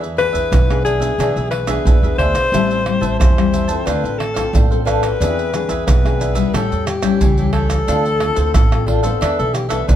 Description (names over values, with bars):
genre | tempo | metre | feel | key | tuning
samba and choro | 90 BPM | 4/4 | straight | unclear | A4 = 440 Hz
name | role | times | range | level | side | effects
cavaquinho | accompaniment | 0.0-10.0 s | D4 to A5 | -24 LUFS | right 4 dB | none
nylon-string guitar | accompaniment | 0.0-10.0 s | A2 to A4 | -22 LUFS | left 5 dB | none
upright bass | bass | 0.0-10.0 s | A1 to E2 | -22 LUFS | equal | none
maracas, pandeiro, tamborim and surdo | percussion | 0.0-10.0 s | none | -18 LUFS | right 1 dB | none
breathy alto saxophone | melody | 0.2-10.0 s | F4 to C5 | -20 LUFS | left 3 dB | none
room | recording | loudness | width
light reverb | none | -14 LUFS | side -11 dB against mid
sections
0.0-10.0 A section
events
none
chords
0.0 E7; 2.5 Am7; 3.9 Dm7; 5.2 E7b13; 6.5 A7; 7.9 Dm7; 9.2 E7sus4